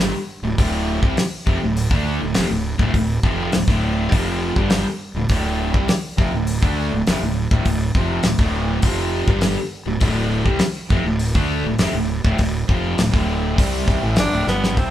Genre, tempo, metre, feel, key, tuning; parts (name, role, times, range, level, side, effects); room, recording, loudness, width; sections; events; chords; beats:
classic rock; 102 BPM; 4/4; straight; A4 = 440 Hz
cranked stack guitar; riff; 0.0-14.9 s; D2 to D4; -25 LUFS; left 6 dB; overdrive, phaser
distorted electric guitar; riff; 0.0-14.9 s; D2 to D4; -25 LUFS; right 6 dB; distortion
fuzz fingered electric bass; bass; 0.0-14.9 s; D1 to D2; -23 LUFS; equal; overdrive
damped 70s drum kit; drums; 0.0-14.9 s; hi-hat, kick drum, snare drum; -20 LUFS; equal
raspy tenor saxophone; melody; 14.2-14.9 s; B3 to D4; -21 LUFS; equal
light reverb; band playing live in one room; -17 LUFS; side -12 dB against mid
0.0-14.8 A section
drum fill 14.5
0.0 D5
| 0.57 1.16 1.75 2.34 | 2.93 3.52 4.11 4.71 | 5.30 5.89 6.48 7.07 | 7.66 8.25 8.84 9.44 | 10.03 10.62 11.21 11.80 | 12.39 12.99 13.58 14.17 | 14.77